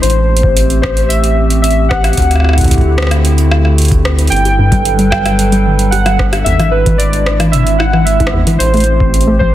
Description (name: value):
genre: IDM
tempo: 112 BPM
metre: 4/4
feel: straight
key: G major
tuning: A4 = 440 Hz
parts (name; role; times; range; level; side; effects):
- warbly lo-fi synth keys; melody; 0.0-9.5 s; B4 to G5; -16 LUFS; equal; chorus, tape echo
- warbly tape-like pad; sustained chords; 0.0-9.5 s; D3 to B4; -18 LUFS; equal; chorus, built-in reverb
- rubbery square bass; bass; 0.0-9.5 s; G1 to D2; -13 LUFS; equal; none
- booming analog drum machine; drums; 0.0-9.3 s; hi-hat, rim click; -18 LUFS; right 1 dB; overdrive
- electronic kick drum; drums; 0.4-9.5 s; none; -16 LUFS; equal; overdrive
- deep acid bass; arpeggios; 4.5-9.5 s; E2 to G4; -16 LUFS; left 1 dB; cassette tape
room: light reverb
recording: dense, heavily limited modern master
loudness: -9 LUFS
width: side -13 dB against mid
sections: 0.0-9.5 A section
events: none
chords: 0.0 Am7; 2.2 D9sus4; 4.3 Gmaj9; 6.5 E7/G#; 8.6 Am7